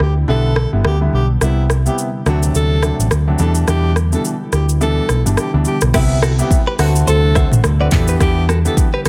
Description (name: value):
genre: afrobeats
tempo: 106 BPM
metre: 4/4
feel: swing 58% on 16ths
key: E minor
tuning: A4 = 440 Hz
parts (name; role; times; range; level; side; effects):
- breathy alto saxophone; melody; 0.0-8.8 s; E4 to A4; -26 LUFS; equal; none
- glassy FM pad; sustained chords; 0.0-9.1 s; C3 to G4; -30 LUFS; equal; none
- hollow-body short-scale picked electric bass; bass; 0.0-9.1 s; G1 to E2; -17 LUFS; equal; none
- afro-pop drum kit; drums; 0.0-9.1 s; crash cymbal, handclaps, hi-hat, kick drum, rim click, shaker, toms; -20 LUFS; equal; none
- clear grand piano; accompaniment; 0.3-8.9 s; B2 to G4; -24 LUFS; equal; none
- direct-recorded clean electric guitar; riff; 5.9-9.1 s; E4 to E5; -26 LUFS; equal; spring reverb
room: little or no reverb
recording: dense, heavily limited modern master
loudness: -15 LUFS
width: mono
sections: 0.0-5.9 A section; 5.9-9.1 B section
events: none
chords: 0.0 Em7; 1.4 Cmaj7; 2.3 D7; 3.4 Em7; 5.9 Cmaj7; 6.8 D7; 7.9 Em7